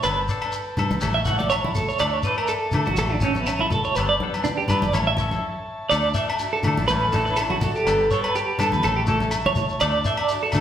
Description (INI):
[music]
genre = highlife guitar band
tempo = 123 BPM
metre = 4/4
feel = swing 55% on 16ths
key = unclear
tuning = A4 = 440 Hz
[part]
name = semi-hollow electric guitar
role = accompaniment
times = 0.0-10.6 s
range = E3 to A4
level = -30 LUFS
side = left 5 dB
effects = none
[part]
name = combo organ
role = sustained chords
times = 0.0-10.6 s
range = B4 to A5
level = -33 LUFS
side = left 1 dB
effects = none
[part]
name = clean electric guitar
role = arpeggios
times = 0.0-10.6 s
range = B3 to F#5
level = -23 LUFS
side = right 3 dB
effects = tremolo
[part]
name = fingered electric bass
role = bass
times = 0.0-10.6 s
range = G1 to D3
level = -28 LUFS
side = equal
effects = none
[part]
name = agogo bells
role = percussion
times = 0.0-10.6 s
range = none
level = -30 LUFS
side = left 2 dB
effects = none
[part]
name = shekere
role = percussion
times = 0.0-10.6 s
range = none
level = -30 LUFS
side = left 1 dB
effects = none
[part]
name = congas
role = percussion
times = 0.8-10.6 s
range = none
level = -29 LUFS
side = left 1 dB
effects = none
[part]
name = sitar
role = melody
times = 6.4-10.6 s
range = A3 to A4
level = -26 LUFS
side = equal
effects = none
[sound]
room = wet large studio reverb, RT60 1.3 s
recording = band playing live in one room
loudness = -20 LUFS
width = side -10 dB against mid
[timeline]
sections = 0.0-5.9 A section; 5.9-10.6 B section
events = clean electric guitar solo 0.0-5.9; break 5.4-5.9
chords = 0.0 Gadd9; 1.0 A; 2.0 Dsus2; 3.0 A; 4.0 Gadd9; 4.9 A; 5.9 Dsus2; 6.9 A; 7.9 Gadd9; 8.8 A; 9.8 Dsus2